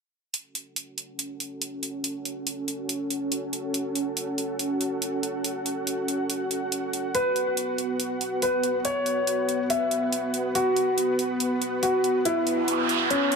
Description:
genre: heavy wobble dubstep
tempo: 141 BPM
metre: 4/4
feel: swing 54% on 16ths, half-time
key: F# minor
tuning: A4 = 445 Hz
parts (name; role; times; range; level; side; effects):
- supersaw pad; sustained chords; 0.3-13.4 s; B3 to F#5; -28 LUFS; right 1 dB; low-pass filter
- electronic hi-hat; drums; 0.3-13.4 s; none; -29 LUFS; right 2 dB; overdrive
- dark concert grand piano; melody; 7.1-13.4 s; C#4 to E5; -24 LUFS; left 1 dB; ping-pong delay
- noise sweep; sound effects; 12.4-13.4 s; none; -26 LUFS; right 5 dB; none
room: moderate plate reverb, RT60 1.6 s, digital ambience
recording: none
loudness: -24 LUFS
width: side -5 dB against mid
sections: 0.3-13.4 A section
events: filter sweep on supersaw synth 0.3-13.4; noise sweep 12.4-13.4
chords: 0.3 F#m; 7.1 B5

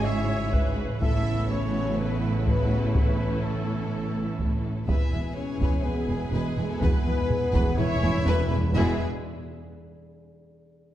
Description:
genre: cinematic, epic orchestral film score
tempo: 124 BPM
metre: 4/4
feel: straight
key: E major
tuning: A4 = 440 Hz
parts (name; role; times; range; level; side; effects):
- rich chamber violin section; melody; 0.0-9.0 s; G#4 to E5; -37 LUFS; left 3 dB; none
- rich symphonic violin section; second line; 0.0-9.0 s; G#4 to G#5; -38 LUFS; left 4 dB; none
- rich symphonic viola section; accompaniment; 0.0-9.0 s; E3 to C#5; -37 LUFS; equal; none
- mellow French horn section; sustained chords; 0.0-9.0 s; G#3 to E4; -34 LUFS; left 3 dB; none
- warm studio string section; sustained chords; 0.0-9.0 s; B3 to C#5; -36 LUFS; left 2 dB; none
- warm trombone section; sustained chords; 0.0-9.0 s; B2 to B3; -36 LUFS; right 2 dB; none
- clear trumpet; stabs; 0.0-4.6 s; A4 to E5; -37 LUFS; right 1 dB; none
- rich symphonic double bass section; bass; 0.0-9.0 s; E1 to A1; -29 LUFS; right 2 dB; none
- warm symphonic cello section; bass; 0.0-9.0 s; E2 to A2; -31 LUFS; right 2 dB; none
- taiko ensemble; drums; 0.5-8.9 s; none; -27 LUFS; equal; none
- timpani; percussion; 4.9-9.0 s; E2; -31 LUFS; equal; none
room: moderate scoring stage reverb, RT60 1.8 s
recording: dark, warm production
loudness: -23 LUFS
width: side -12 dB against mid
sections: 0.0-4.9 A section; 4.9-8.7 B section; 8.7-10.7 C section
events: timpani fill 4.9-8.7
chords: 0.0 C#m/G#; 1.0 Aadd9; 4.9 E

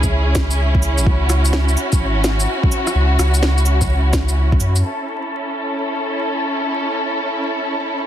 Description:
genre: future garage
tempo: 127 BPM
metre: 4/4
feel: swing 66% on 16ths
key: unclear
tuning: A4 = 440 Hz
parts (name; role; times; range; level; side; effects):
- dark studio string section; sustained chords; 0.0-8.1 s; C#4 to A4; -20 LUFS; equal; sidechain pumping, low-pass filter
- warm sub bass; bass; 0.0-4.8 s; G#1 to F#2; -16 LUFS; equal; sidechain pumping
- electronic kick drum; drums; 0.0-4.6 s; none; -18 LUFS; equal; overdrive, small room ambience
- electronic shaker, snare drum, cabasa and rim click; drums; 0.0-4.8 s; none; -23 LUFS; equal; overdrive, small room ambience
room: light reverb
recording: dense, heavily limited modern master, vinyl crackle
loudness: -15 LUFS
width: side -11 dB against mid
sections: 0.0-4.8 A section; 4.8-8.1 B section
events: none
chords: 0.0 C#m; 4.8 A

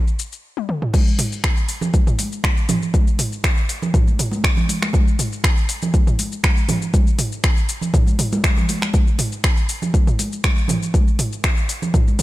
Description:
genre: house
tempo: 120 BPM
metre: 4/4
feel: straight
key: none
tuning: none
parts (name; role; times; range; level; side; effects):
- deep house drum kit; drums; 0.1-12.2 s; crash cymbal, finger snaps, hi-hat, shaker, toms; -22 LUFS; equal; overdrive
- electronic kick drum; drums; 0.9-12.0 s; none; -17 LUFS; equal; overdrive
- congas; percussion; 0.9-12.2 s; none; -24 LUFS; right 2 dB; none
room: little or no reverb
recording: none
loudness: -16 LUFS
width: side -17 dB against mid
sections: 0.9-12.2 A section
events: stop 0.4-0.9; drum fill 0.6-0.9; drop 0.9-12.2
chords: none

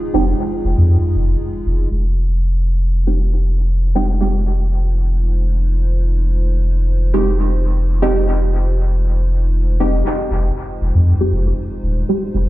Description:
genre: dub techno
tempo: 118 BPM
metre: 4/4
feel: straight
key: F minor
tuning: A4 = 435 Hz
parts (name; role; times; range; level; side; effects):
- dark analog pad; sustained chords; 0.0-12.5 s; Ab3 to C5; -28 LUFS; equal; chorus
- deep mellow chord stab; stabs; 0.1-12.5 s; Ab3 to G4; -20 LUFS; right 2 dB; chorus, phaser, dub echo
- pure sine sub bass; bass; 0.1-12.5 s; Eb1 to F2; -15 LUFS; equal; none
room: digital ambience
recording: played on a big sound system in a bare room, large studio reverb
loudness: -14 LUFS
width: side -16 dB against mid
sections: 0.0-1.9 A section; 1.9-10.1 B section; 10.1-12.5 A section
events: filter sweep on synth stab 1.9-10.1, 10.1-12.5; filter sweep on analog synth pad 1.9-10.1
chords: 0.0 Fm7

